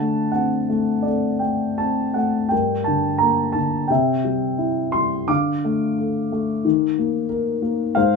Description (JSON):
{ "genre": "classical, lyrical solo piano", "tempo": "79-93 BPM", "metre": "4/4", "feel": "rubato", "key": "unclear", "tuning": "A4 = 440 Hz", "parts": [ { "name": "dark concert grand piano", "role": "solo", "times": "0.0-8.2 s", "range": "G2 to D6", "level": "-18 LUFS", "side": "left 2 dB", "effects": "none" } ], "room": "light reverb", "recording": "none", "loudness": "-19 LUFS", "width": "side -4 dB against mid", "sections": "0.0-8.2 A section", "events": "none", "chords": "0.0 D7; 2.5 Gm; 3.9 C; 5.3 Dm; 6.7 Eb5", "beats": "0.36 1.06 1.79 | 2.52 3.21 3.89 4.59 | 5.30 5.99 6.65 7.30 | 7.95" }